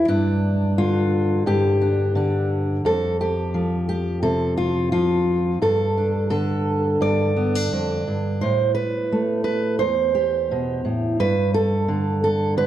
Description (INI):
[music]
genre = folk, solo fingerstyle acoustic guitar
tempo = 87 BPM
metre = 4/4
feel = straight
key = unclear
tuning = A4 = 445 Hz
[part]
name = fingerpicked steel-string acoustic guitar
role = solo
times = 0.0-12.7 s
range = E2 to D5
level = -19 LUFS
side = right 1 dB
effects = none
[sound]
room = moderate large studio reverb, RT60 1.3 s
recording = dark, warm production, lossy compression artefacts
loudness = -19 LUFS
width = side -12 dB against mid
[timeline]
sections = 0.0-12.7 A section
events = none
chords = 0.1 G5; 2.8 Fsus2; 5.6 Gsus2; 8.4 Am; 11.2 Gsus2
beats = | 0.09 0.78 1.47 2.15 | 2.84 3.53 4.22 4.92 | 5.61 6.31 7.01 7.72 | 8.42 9.12 9.81 10.51 | 11.20 11.89 12.57